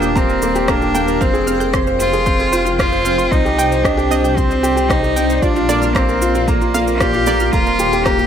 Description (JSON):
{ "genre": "piano and strings electronica", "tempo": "114 BPM", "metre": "4/4", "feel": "straight", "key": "C minor", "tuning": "A4 = 440 Hz", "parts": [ { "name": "clear cello", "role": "melody", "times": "0.0-8.3 s", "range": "Bb3 to G4", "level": "-19 LUFS", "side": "left 1 dB", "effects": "none" }, { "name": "granular cloud pad", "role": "sustained chords", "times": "0.0-8.3 s", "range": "Bb3 to Ab5", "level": "-24 LUFS", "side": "equal", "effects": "built-in reverb, sidechain pumping" }, { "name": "analog pluck", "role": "arpeggios", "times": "0.0-8.1 s", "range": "C5 to G6", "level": "-25 LUFS", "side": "right 3 dB", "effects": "chorus, sidechain pumping, ping-pong delay" }, { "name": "felt-muted upright piano", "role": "riff", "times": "0.0-8.3 s", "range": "Bb3 to C5", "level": "-18 LUFS", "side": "equal", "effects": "none" }, { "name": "dark detuned saw bass", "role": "bass", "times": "0.0-8.3 s", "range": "Eb1 to C2", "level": "-22 LUFS", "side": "equal", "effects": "sidechain pumping" }, { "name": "electronic shaker and rim click", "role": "drums", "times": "0.0-8.3 s", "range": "none", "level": "-24 LUFS", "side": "equal", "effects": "none" }, { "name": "electronic kick drum", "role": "drums", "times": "0.2-8.2 s", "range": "none", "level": "-20 LUFS", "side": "equal", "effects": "none" } ], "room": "light reverb, digital ambience", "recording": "none", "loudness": "-13 LUFS", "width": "side -8 dB against mid", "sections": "0.0-8.3 A section", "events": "none", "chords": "0.0 Eb; 1.2 Fm; 3.3 Cm; 5.4 Bb; 7.5 Eb" }